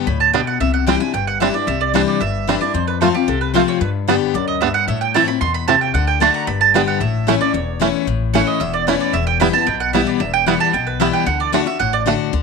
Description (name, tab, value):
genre	bluegrass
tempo	225 BPM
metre	4/4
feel	straight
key	G major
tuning	A4 = 443 Hz
part	picked steel-string acoustic guitar	accompaniment	0.0-12.4 s	E2 to G4	-19 LUFS	left 14 dB	none
part	mandolin	stabs	0.1-12.0 s	G4 to C6	-19 LUFS	right 10 dB	none
part	upright bass	bass	0.1-12.4 s	E1 to A2	-23 LUFS	left 2 dB	none
part	bluegrass banjo	arpeggios	0.3-12.1 s	G3 to F4	-20 LUFS	right 10 dB	none
room	moderate spring reverb, RT60 1.4 s, small room reverb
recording	1960s-style stereo with parts hard left and right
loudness	-15 LUFS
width	side -4 dB against mid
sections	0.0-7.0 A section; 7.0-12.4 A section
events	mandolin solo 0.0-12.4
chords	0.0 G; 0.6 Cadd9; 2.7 F; 3.8 G; 4.9 Am; 5.9 D; 6.5 G; 7.0 A; 9.1 Em; 11.3 D